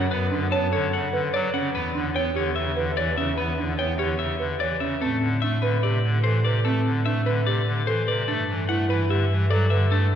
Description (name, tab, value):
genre	classical, minimalist pattern music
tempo	147 BPM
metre	4/4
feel	straight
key	E dorian, A dorian from 5.0 s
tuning	A4 = 440 Hz
part	clean electric guitar	melody	0.0-10.2 s	A4 to A5	-28 LUFS	left 6 dB	none
part	pipe organ, clarinet reed	accompaniment	0.0-10.2 s	C3 to B3	-30 LUFS	left 1 dB	none
part	folk marimba with medium mallets	arpeggios	0.0-10.2 s	C4 to C#5	-27 LUFS	right 2 dB	none
part	warm double bass	bass	0.0-10.2 s	E2 to A2	-25 LUFS	equal	none
room	wet church reverb, RT60 3.4 s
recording	recorded in a church or concert hall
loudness	-21 LUFS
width	side -9 dB against mid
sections	0.0-5.0 A section; 5.0-10.2 B section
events	none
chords	0.0 D6/F#; 1.7 Em7; 5.0 Am9; 8.3 G69